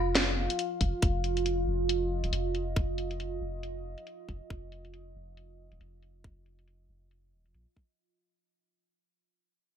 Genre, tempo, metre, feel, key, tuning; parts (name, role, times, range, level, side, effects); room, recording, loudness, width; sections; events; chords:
deep dubstep; 138 BPM; 4/4; swing 58% on 16ths, half-time; A4 = 445 Hz
deep dark ambient pad; sustained chords; 0.0-8.0 s; F4 to F5; -34 LUFS; right 2 dB; chorus, built-in reverb
soft dub sub bass; bass; 0.0-7.7 s; Eb1 to Bb1; -34 LUFS; equal; tube saturation
garage drum kit; drums; 0.2-7.9 s; hi-hat, snare drum; -31 LUFS; equal; low-pass filter on hats, low-pass filter on perc, low-pass filter on snare, gated reverb
electronic kick drum; drums; 0.8-7.9 s; -30 LUFS; equal
light reverb, digital ambience; bright 1980s-style digital production; -28 LUFS; side -8 dB against mid
0.0-8.0 A section
fade-out 0.0-8.0
0.0 Ebsus2